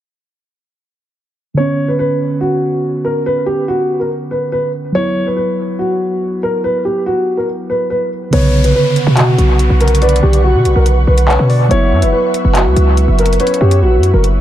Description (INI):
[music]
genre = hip hop, drill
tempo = 142 BPM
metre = 4/4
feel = half-time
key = B harmonic minor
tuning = A4 = 440 Hz
[part]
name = muted felt-like synth keys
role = accompaniment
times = 1.5-14.4 s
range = C#3 to E4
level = -19 LUFS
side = right 2 dB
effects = chorus, low-pass filter, dub echo
[part]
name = dark concert grand piano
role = melody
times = 1.6-14.2 s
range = F#4 to C#5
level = -16 LUFS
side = equal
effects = low-pass filter, dub echo
[part]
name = soft octave-layered synth lead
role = second line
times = 8.3-13.8 s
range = B4 to E5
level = -24 LUFS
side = left 5 dB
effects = chorus, dub echo
[part]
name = ethereal airy pad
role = sustained chords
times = 8.7-14.4 s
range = B4 to C#6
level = -21 LUFS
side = right 3 dB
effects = ensemble chorus, built-in reverb
[part]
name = hard-hitting 808-style bass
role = bass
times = 8.3-14.4 s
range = F#1 to B2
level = -11 LUFS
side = equal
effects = none
[part]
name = drill drum kit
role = drums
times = 8.3-14.3 s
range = handclaps, hi-hat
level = -21 LUFS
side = left 1 dB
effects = dub echo
[part]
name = downlifter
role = sound effects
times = 8.3-11.7 s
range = none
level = -27 LUFS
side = left 1 dB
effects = none
[sound]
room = little or no reverb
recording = echo-heavy mix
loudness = -11 LUFS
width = side -12 dB against mid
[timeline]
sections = 1.6-8.3 A section; 8.3-14.4 B section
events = none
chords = 1.6 Bmadd9; 4.9 F#7sus4; 8.3 Bmadd9; 11.7 F#7sus4